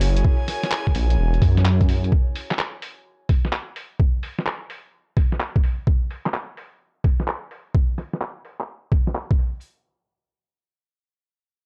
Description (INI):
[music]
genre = UK garage, two-step garage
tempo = 128 BPM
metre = 4/4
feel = swing 66% on 16ths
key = unclear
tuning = A4 = 440 Hz
[part]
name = soft string machine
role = sustained chords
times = 0.0-2.1 s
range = C#4 to A#4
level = -38 LUFS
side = equal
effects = ensemble chorus, sidechain pumping
[part]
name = dark detuned saw bass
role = bass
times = 0.0-2.1 s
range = E1 to F#2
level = -20 LUFS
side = equal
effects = none
[part]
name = boom bap sampler-style drum kit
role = drums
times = 0.0-9.5 s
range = handclaps, hi-hat, snare drum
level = -30 LUFS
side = equal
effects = low-pass filter on hats, low-pass filter on snare
[part]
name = airy breathy pad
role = texture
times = 0.0-2.1 s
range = F#4 to G#5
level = -35 LUFS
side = equal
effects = chorus, sidechain pumping
[part]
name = electronic kick drum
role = drums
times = 0.2-9.4 s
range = none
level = -21 LUFS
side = equal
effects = none
[sound]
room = digital ambience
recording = dry, gritty hardware recording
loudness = -22 LUFS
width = mono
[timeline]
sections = 0.0-9.6 A section; 9.6-11.7 B section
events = filter sweep on drum 0.0-9.6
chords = 0.0 F#7; 2.1 N.C.